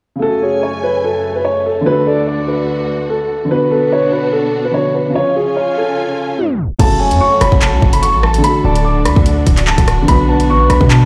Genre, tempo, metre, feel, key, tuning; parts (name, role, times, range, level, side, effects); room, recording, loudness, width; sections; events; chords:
hip hop, drill; 146 BPM; 4/4; half-time; F# harmonic minor; A4 = 440 Hz
dark grand piano; melody; 0.2-11.1 s; G#4 to D6; -18 LUFS; equal; low-pass filter, digital delay
felt-muted upright piano; accompaniment; 0.2-11.1 s; C#3 to C#5; -22 LUFS; equal; low-pass filter
warm symphonic string section; sustained chords; 0.2-11.1 s; D2 to G#5; -25 LUFS; equal
soft octave-layered synth lead; second line; 0.4-10.9 s; B4 to E#5; -24 LUFS; equal; chorus, digital delay
hard-hitting 808-style bass; bass; 6.8-11.1 s; C#1 to B2; -16 LUFS; equal
drill drum kit; drums; 6.8-11.0 s; crash cymbal, handclaps, hi-hat, kick drum, rim click; -16 LUFS; equal
studio reverb; played on a big sound system in a bare room, stone room reverb, tape stop; -14 LUFS; mono
0.2-6.8 A section; 6.8-11.1 B section
tape stop 6.4-6.8
0.2 F#madd9; 1.9 D; 3.5 Bm; 5.2 C#; 6.8 F#m; 8.4 D; 10.1 Bm